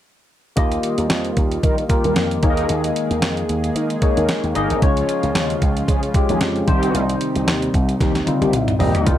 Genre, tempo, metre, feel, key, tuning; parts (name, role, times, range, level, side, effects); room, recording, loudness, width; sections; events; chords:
1980s-style pop; 113 BPM; 4/4; swing 55% on 16ths; A4 = 440 Hz
barky tine electric piano; accompaniment; 0.6-9.2 s; G3 to Eb5; -22 LUFS; left 3 dB; overdrive, lush chorus
brassy analog pad; sustained chords; 0.6-9.2 s; C3 to Ab4; -26 LUFS; right 2 dB; chorus, tremolo
slap bass with an envelope filter; bass; 0.6-9.2 s; G1 to Eb3; -23 LUFS; right 1 dB
clean 12-bit digital drum machine; drums; 0.6-9.2 s; hi-hat, kick drum, snare drum, toms; -20 LUFS; equal
mellow synth brass; stabs; 1.6-9.2 s; Eb3 to Bb4; -25 LUFS; equal; chorus, tape echo
light reverb; -16 LUFS; side -12 dB against mid
0.6-9.1 A section
drum fill 8.0-9.1
0.6 Ebadd9; 2.4 Absus2/Eb; 4.8 Db; 6.7 Cm